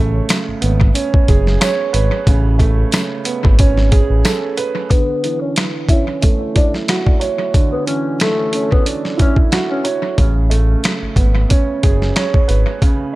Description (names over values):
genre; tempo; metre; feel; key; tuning
hip hop, boom-bap hip-hop; 91 BPM; 4/4; swing 55% on 16ths; D lydian; A4 = 441 Hz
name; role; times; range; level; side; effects
dark upright piano; accompaniment; 0.0-13.2 s; C#3 to C#5; -20 LUFS; right 4 dB; cassette tape, high-pass filter, low-pass filter
smooth synth bass; bass; 0.0-4.2, 10.2-12.7 s; F#1 to A1; -15 LUFS; equal; none
boom bap sampler-style drum kit; drums; 0.3-13.0 s; hi-hat, kick drum, rim click, snare drum; -15 LUFS; equal; analog delay
tambourine; percussion; 0.3-4.4 s; none; -32 LUFS; left 11 dB; none
growling tenor saxophone; melody; 4.9-9.4 s; A3 to E4; -22 LUFS; left 3 dB; high-pass filter, low-pass filter, analog delay
room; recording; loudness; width
studio ambience; echo-heavy mix; -13 LUFS; side -18 dB against mid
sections
0.0-4.9 A section; 4.9-13.2 B section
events
filter sweep 4.9-13.2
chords
0.0 Amaj9; 4.9 Dmaj9; 10.2 Amaj9